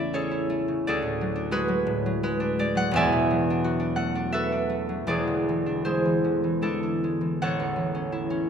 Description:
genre	classical, solo harp piece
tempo	71-88 BPM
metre	3/4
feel	rubato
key	unclear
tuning	A4 = 440 Hz
part	concert harp	solo	0.0-8.5 s	E1 to G#5	-23 LUFS	equal	none
room	moderate concert hall reverb, RT60 2.1 s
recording	minimal, uncompressed stereo recording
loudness	-23 LUFS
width	side -7 dB against mid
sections	0.0-8.5 A section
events	none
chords	0.0 Amaj7; 0.8 Dmaj7#11; 2.9 E11; 5.1 Eaug7; 7.4 Amaj7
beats	0.13 | 0.84 1.53 2.22 | 2.92 3.61 4.32 | 5.08 5.85 6.61 | 7.41 8.15

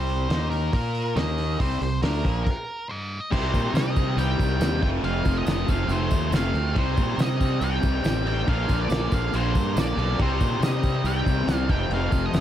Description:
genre	classic rock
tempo	140 BPM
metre	4/4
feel	straight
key	C dorian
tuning	A4 = 440 Hz
part	octave-fuzz lead guitar	melody	0.0-12.4 s	Bb4 to G5	-31 LUFS	equal	distortion, slapback echo
part	distorted electric guitar	riff	0.0-12.4 s	F2 to Bb4	-31 LUFS	right 12 dB	overdrive
part	raw garage guitar	riff	0.0-12.4 s	F2 to Bb4	-31 LUFS	left 12 dB	overdrive
part	fuzz fingered electric bass	bass	0.0-12.4 s	F1 to C3	-26 LUFS	equal	overdrive
part	cloth-damped thuddy drum kit	drums	0.1-12.4 s	crash cymbal, hi-hat, kick drum, snare drum	-26 LUFS	equal	none
part	distorted electric guitar	riff	3.3-12.4 s	F2 to C4	-32 LUFS	equal	overdrive
part	tambourine	percussion	3.5-12.4 s	none	-47 LUFS	right 6 dB	none
room	small room ambience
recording	none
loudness	-21 LUFS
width	side -11 dB against mid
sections	0.0-3.3 A section; 3.3-12.4 B section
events	stop 2.5-3.3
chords	0.3 Eb5; 0.7 Bb5; 1.2 Eb5; 1.6 C5; 2.2 Bb5; 3.1 N.C.; 3.3 Cm; 4.8 F; 6.8 Cm; 8.5 Bb; 10.2 Cm; 11.7 F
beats	0.29 0.72 1.16 | 1.59 2.02 2.45 2.88 | 3.32 3.75 4.18 4.61 | 5.04 5.47 5.90 6.33 | 6.76 7.18 7.61 8.04 | 8.47 8.90 9.33 9.76 | 10.19 10.62 11.05 11.48 | 11.91 12.34

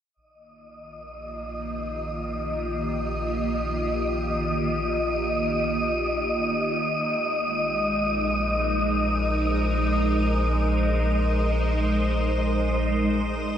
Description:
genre	ambient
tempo	free time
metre	none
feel	none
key	unclear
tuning	A4 = 438 Hz
part	wind-like tuned noise texture	texture	0.8-13.6 s	Eb5 to Eb6	-27 LUFS	left 1 dB	built-in reverb
part	evolving wavetable pad	sustained chords	1.3-13.6 s	Eb3 to C5	-27 LUFS	right 1 dB	ensemble chorus, built-in reverb, phaser
part	round analog bass	bass	0.2-13.6 s	Bb1	-28 LUFS	equal	none
room	wet lush hall reverb, RT60 2.8 s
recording	none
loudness	-22 LUFS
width	side -9 dB against mid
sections	0.2-13.6 A section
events	fade-in on ambient pad 0.2-13.6; fade-in on analog synth bass 0.2-13.6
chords	0.2 Ebadd9/Bb; 7.0 Ab69/Bb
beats	free time

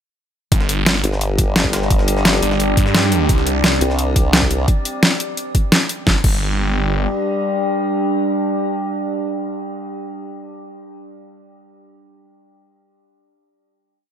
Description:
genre	dark technical drum and bass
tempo	173 BPM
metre	4/4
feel	straight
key	unclear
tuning	A4 = 443 Hz
part	metallic inharmonic drone	sustained chords	1.0-9.6 s	G3 to D5	-22 LUFS	equal	chorus, built-in reverb, sidechain pumping
part	phased detuned saw bass	bass	0.5-3.8, 6.1-7.1 s	G1 to G2	-18 LUFS	equal	phaser, tube saturation, sidechain pumping
part	breakbeat sampler-style drum kit	drums	0.5-4.6 s	hi-hat, snare drum	-27 LUFS	equal	none
part	dubstep drum kit	drums	0.5-6.3 s	crash cymbal, hi-hat, snare drum	-17 LUFS	equal	overdrive
part	electronic kick drum	drums	0.5-6.3 s	none	-17 LUFS	equal	overdrive
part	formant-sweep wobble bass	bass	1.0-4.7 s	G1 to C2	-19 LUFS	equal	chorus
room	light reverb, digital ambience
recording	none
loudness	-15 LUFS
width	side -9 dB against mid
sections	0.5-6.1 drop; 6.1-8.8 final chord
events	drop 0.5-6.1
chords	0.5 G5; 3.3 C5; 6.1 G5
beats	| 0.52 0.86 1.21 1.56 | 1.91 2.25 2.60 2.95 | 3.29 3.64 3.99 4.33 | 4.68 5.03 5.37 5.72 | 6.07 6.41 6.76 7.11 | 7.45 7.80 8.15 8.49

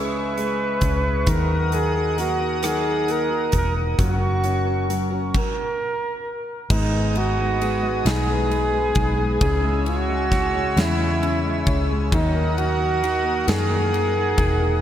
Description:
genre	six-eight pop ballad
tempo	44 BPM (dotted quarters)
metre	6/8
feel	straight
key	G# minor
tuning	A4 = 444 Hz
part	warm flugelhorn	melody	0.0-14.8 s	D#4 to B4	-24 LUFS	right 2 dB	analog delay
part	clear concert grand piano	accompaniment	0.0-14.8 s	C#3 to D#4	-28 LUFS	left 2 dB	none
part	chorused pulse-width pad	sustained chords	0.0-14.8 s	G#4 to E6	-29 LUFS	equal	none
part	vintage muted fingered electric bass	bass	0.0-14.8 s	E1 to F#2	-24 LUFS	equal	none
part	huge arena drum kit	drums	0.4-14.6 s	crash cymbal, hi-hat, kick drum, ride cymbal, rim click, snare drum	-26 LUFS	equal	none
part	fingerpicked plugged-in steel-string acoustic guitar	arpeggios	1.3-14.8 s	G#2 to A#4	-32 LUFS	left 3 dB	none
room	moderate lush hall reverb, RT60 2.6 s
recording	dreamy mix soaked in reverb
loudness	-19 LUFS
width	side -10 dB against mid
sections	0.0-6.7 A section; 6.7-14.8 B section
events	stop 5.3-6.7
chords	0.0 C#m; 1.3 D#m; 4.0 F#; 6.7 G#m; 9.4 C#m; 12.1 D#m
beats	| 1.27 2.63 | 3.99 5.34 | 6.70 8.06 | 9.41 10.77 | 12.12 13.47

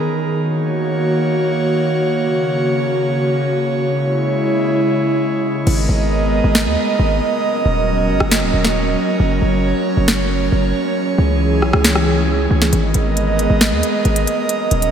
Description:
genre	hip hop, trap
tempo	136 BPM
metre	4/4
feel	half-time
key	G# minor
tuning	A4 = 441 Hz
part	airy breathy pad	sustained chords	0.0-14.9 s	C#3 to D#5	-16 LUFS	right 1 dB	chorus
part	hard-hitting 808-style bass	bass	5.7-14.9 s	C#1 to D#2	-17 LUFS	equal	none
part	trap drum kit	drums	5.7-14.9 s	crash cymbal, hi-hat, rim click, snare drum	-21 LUFS	equal	none
room	wet cathedral reverb, RT60 5.0 s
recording	dreamy mix soaked in reverb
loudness	-14 LUFS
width	side -8 dB against mid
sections	0.0-5.7 A section; 5.7-14.9 B section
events	hi-hats muted 5.7-12.7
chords	0.4 D#m7; 2.1 F#; 3.9 C#m; 5.7 G#madd9; 7.4 D#m7; 9.2 F#; 11.0 C#m; 12.7 G#madd9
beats	| 0.37 0.81 1.26 1.70 | 2.14 2.58 3.02 3.46 | 3.90 4.34 4.79 5.23 | 5.67 6.11 6.55 6.99 | 7.43 7.87 8.31 8.76 | 9.20 9.64 10.08 10.52 | 10.96 11.40 11.84 12.29 | 12.73 13.17 13.61 14.05 | 14.49

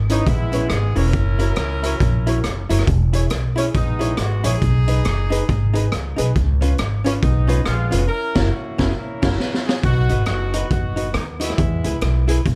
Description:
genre	ska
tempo	138 BPM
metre	4/4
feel	swing 61% on 8ths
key	B major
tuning	A4 = 440 Hz
part	upright bass	bass	0.0-12.6 s	E1 to E2	-22 LUFS	equal	none
part	clear horn section	melody	0.1-12.3 s	G#3 to B4	-29 LUFS	equal	slapback echo
part	archtop guitar, miked and amplified	accompaniment	0.1-12.5 s	C#4 to C#5	-28 LUFS	equal	slapback echo
part	warm upright piano	stabs	0.1-9.3 s	C#4 to C#5	-30 LUFS	equal	none
part	raw garage drum kit	drums	0.1-12.6 s	crash cymbal, hi-hat, kick drum, rim click, snare drum	-25 LUFS	equal	none
room	little or no reverb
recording	dark, warm production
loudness	-19 LUFS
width	mono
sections	0.0-9.8 A section; 9.8-12.6 B section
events	band accent 8.1-9.8; drum fill 9.4-9.8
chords	0.0 C#m7; 1.1 F#7; 2.9 E6; 4.6 B6; 6.4 C#7; 8.1 F#7; 9.8 B; 11.6 E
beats	0.27 0.70 | 1.14 1.57 2.01 2.44 | 2.88 3.31 3.75 4.18 | 4.62 5.05 5.49 5.92 | 6.36 6.79 7.23 7.66 | 8.10 8.53 8.97 9.40 | 9.84 10.28 10.71 11.15 | 11.58 12.02 12.46

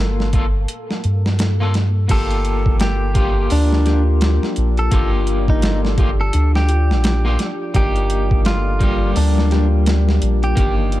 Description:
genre	trip hop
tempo	85 BPM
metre	4/4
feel	swing 60% on 16ths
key	G minor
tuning	A4 = 440 Hz
part	electric guitar at the edge of break-up	accompaniment	0.0-11.0 s	Eb3 to A4	-24 LUFS	left 2 dB	tremolo, vintage 12-bit sampler grit
part	deep dark ambient pad	sustained chords	0.0-11.0 s	Bb3 to D5	-29 LUFS	left 3 dB	chorus, built-in reverb
part	soft dub sub bass	bass	0.0-11.0 s	G1 to G2	-17 LUFS	equal	none
part	boom bap sampler-style drum kit	drums	0.2-11.0 s	crash cymbal, hi-hat, kick drum, snare drum	-20 LUFS	equal	overdrive
part	clean electric guitar	melody	2.1-10.7 s	D4 to A4	-24 LUFS	right 1 dB	tape echo
part	concert harp	arpeggios	2.1-11.0 s	D4 to A4	-28 LUFS	left 2 dB	tape echo
room	digital ambience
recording	dark, warm production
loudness	-14 LUFS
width	side -15 dB against mid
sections	0.0-2.1 A section; 2.1-11.0 B section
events	kick drops out 0.7-2.1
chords	0.0 Gm9; 2.1 Gm7; 7.7 Eb/G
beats	0.69 1.39 | 2.10 2.81 3.51 4.22 | 4.92 5.63 6.33 7.04 | 7.75 8.45 9.16 9.86 | 10.57

